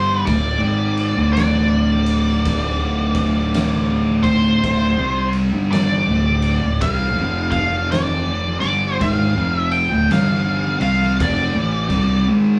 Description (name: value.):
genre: stoner and doom metal.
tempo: 55 BPM.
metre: 4/4.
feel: swing 64% on 8ths.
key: D minor.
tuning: A4 = 440 Hz.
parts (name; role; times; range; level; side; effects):
octave-fuzz lead guitar; melody; 0.0-12.3 s; C5 to G5; -24 LUFS; equal; wah, distortion.
thick fuzz guitar; riff; 0.0-12.6 s; D2 to C4; -23 LUFS; equal; distortion.
thick fuzz guitar; riff; 0.0-12.6 s; D2 to C4; -26 LUFS; equal; distortion.
fuzz fingered electric bass; bass; 0.0-12.3 s; D1 to C2; -26 LUFS; equal; overdrive.
oversized low-tuned drum kit; drums; 0.3-12.1 s; kick drum, ride cymbal, snare drum; -28 LUFS; equal; none.
room: moderate studio reverb, RT60 0.7 s.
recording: band playing live in one room, small room ambience.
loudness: -18 LUFS.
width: mono.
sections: 0.0-12.6 A section.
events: none.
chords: 0.0 D5; 7.1 F5; 8.5 Dm.